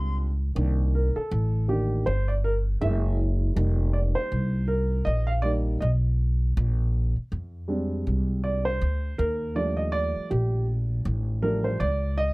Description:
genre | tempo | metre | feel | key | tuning
hip hop, jazz-hop | 80 BPM | 4/4 | swing 58% on 16ths | C dorian | A4 = 435 Hz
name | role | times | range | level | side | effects
dark concert grand piano | accompaniment | 0.0-12.3 s | Eb3 to F5 | -28 LUFS | right 1 dB | none
upright bass | bass | 0.0-12.3 s | F1 to F2 | -24 LUFS | equal | none
room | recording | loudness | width
little or no reverb | dark, warm production | -23 LUFS | side -23 dB against mid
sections
0.6-12.3 A section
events
grand piano solo 0.6-12.3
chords
0.0 G9sus4; 0.6 Cm9; 2.8 F#9; 3.6 F9sus4; 6.6 Bb13; 9.2 Ebmaj9#11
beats
| 0.56 1.31 2.06 2.81 | 3.56 4.31 5.06 5.81 | 6.56 7.31 8.06 8.81 | 9.56 10.31 11.06 11.81

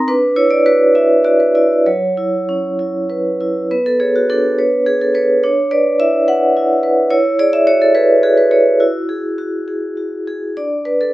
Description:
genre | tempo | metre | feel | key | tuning
classical, contemporary piece for solo vibraphone | 64-72 BPM (dotted quarters) | 6/8 | rubato | B dorian | A4 = 440 Hz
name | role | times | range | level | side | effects
vibraphone with medium hard mallets | solo | 0.0-11.1 s | F#3 to C6 | -12 LUFS | equal | none
room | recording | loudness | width
light reverb | none | -12 LUFS | side -17 dB against mid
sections
0.0-3.7 A section; 3.7-11.1 B section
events
none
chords
0.1 Dadd9; 1.9 F#7sus4; 3.7 Bmadd9; 5.4 D69; 7.1 Eadd9; 10.6 D5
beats
| 0.08 0.95 | 1.86 2.80 | 3.71 4.58 | 5.43 6.28 | 7.11 7.96 | 8.82 9.69 | 10.57

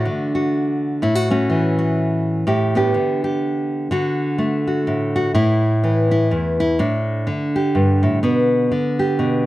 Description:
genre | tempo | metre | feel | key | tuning
folk, solo fingerstyle acoustic guitar | 125 BPM | 3/4 | swing 58% on 8ths | unclear | A4 = 437 Hz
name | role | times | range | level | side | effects
nylon-string guitar | solo | 0.0-9.5 s | E2 to G4 | -16 LUFS | equal | none
room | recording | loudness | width
light reverb | dark, warm production | -16 LUFS | side -16 dB against mid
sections
0.0-3.9 A section; 3.9-9.5 B section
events
none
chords
0.0 D; 1.0 A6; 2.5 G/A; 3.9 D; 5.4 A5; 6.8 D5/A; 8.2 G/B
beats
0.06 0.54 | 1.02 1.50 1.99 | 2.47 2.95 3.43 | 3.91 4.39 4.87 | 5.35 5.83 6.31 | 6.79 7.27 7.75 | 8.23 8.71 9.19

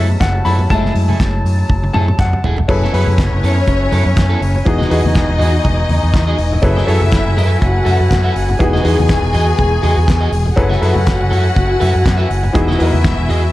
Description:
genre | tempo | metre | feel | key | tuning
disco | 122 BPM | 4/4 | swing 56% on 16ths | F# dorian | A4 = 439 Hz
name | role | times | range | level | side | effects
clear baby grand piano | accompaniment | 0.0-13.5 s | E3 to B5 | -20 LUFS | left 2 dB | none
electric guitar at the edge of break-up | accompaniment | 0.0-13.5 s | A3 to E5 | -25 LUFS | right 2 dB | wide subtle chorus
warm woodwind section | sustained chords | 0.0-13.5 s | E3 to A5 | -25 LUFS | equal | none
overdriven fingered electric bass | bass | 0.0-13.5 s | E1 to F#2 | -15 LUFS | equal | none
damped 70s drum kit | drums | 0.2-13.4 s | crash cymbal, hi-hat, kick drum, snare drum, toms | -18 LUFS | equal | none
congas | percussion | 0.2-13.4 s | none | -25 LUFS | left 2 dB | none
group handclap | percussion | 0.2-13.2 s | none | -33 LUFS | left 4 dB | none
clear studio string section | second line | 2.7-13.5 s | C#4 to G#5 | -20 LUFS | left 2 dB | none
room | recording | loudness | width
small room ambience | dark, warm production | -11 LUFS | side -16 dB against mid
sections
0.0-2.7 A section; 2.7-13.5 B section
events
grand piano solo 0.0-2.7; drum fill 1.7-2.7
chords
0.0 F#m11; 0.7 F#m9; 2.7 F#m11; 4.7 Emaj9; 6.6 F#m11; 8.6 Emaj9; 10.6 F#m11; 12.6 Emaj9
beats
0.21 | 0.71 1.20 1.70 2.19 | 2.68 3.18 3.67 4.16 | 4.66 5.15 5.64 6.14 | 6.63 7.12 7.62 8.11 | 8.60 9.10 9.59 10.08 | 10.58 11.07 11.56 12.06 | 12.55 13.04

